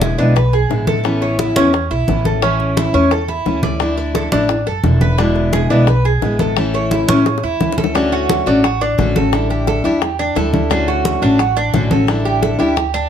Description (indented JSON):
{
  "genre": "latin, Cuban son and guajira",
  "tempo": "174 BPM",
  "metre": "4/4",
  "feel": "straight",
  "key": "D major",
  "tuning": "A4 = 440 Hz",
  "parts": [
    { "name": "picked steel-string acoustic guitar", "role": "accompaniment", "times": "0.0-12.8 s", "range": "B2 to F#4", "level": "-18 LUFS", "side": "left 2 dB", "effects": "none" },
    { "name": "Cuban tres", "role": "arpeggios", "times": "0.0-13.1 s", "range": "C#4 to D5", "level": "-19 LUFS", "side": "right 2 dB", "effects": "none" },
    { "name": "upright bass", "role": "bass", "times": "0.0-13.1 s", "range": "E1 to A2", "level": "-19 LUFS", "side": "right 1 dB", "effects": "none" },
    { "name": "bongos", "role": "percussion", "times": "0.0-12.9 s", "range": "none", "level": "-23 LUFS", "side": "left 8 dB", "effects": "none" },
    { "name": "congas", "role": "percussion", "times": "0.0-13.1 s", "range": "none", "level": "-22 LUFS", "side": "equal", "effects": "none" }
  ],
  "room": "moderate studio reverb, RT60 0.8 s",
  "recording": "none",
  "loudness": "-13 LUFS",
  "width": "side -8 dB against mid",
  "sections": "0.0-8.0 A section; 8.0-13.1 B section",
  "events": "drum fill 7.3-8.0",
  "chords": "0.0 E7; 1.0 Aadd9; 2.4 A; 3.8 Dsus2; 5.2 E7; 6.6 A; 8.0 Dmaj7; 9.3 A7sus4; 10.7 Dmaj7; 12.1 A7sus4",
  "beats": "0.02 0.36 0.70 | 1.05 1.39 1.74 2.08 | 2.42 2.77 3.11 3.46 | 3.80 4.15 4.49 4.84 | 5.18 5.53 5.88 6.22 | 6.57 6.91 7.26 7.61 | 7.95 8.30 8.64 8.99 | 9.33 9.68 10.02 10.36 | 10.71 11.05 11.39 11.74 | 12.08 12.43 12.77"
}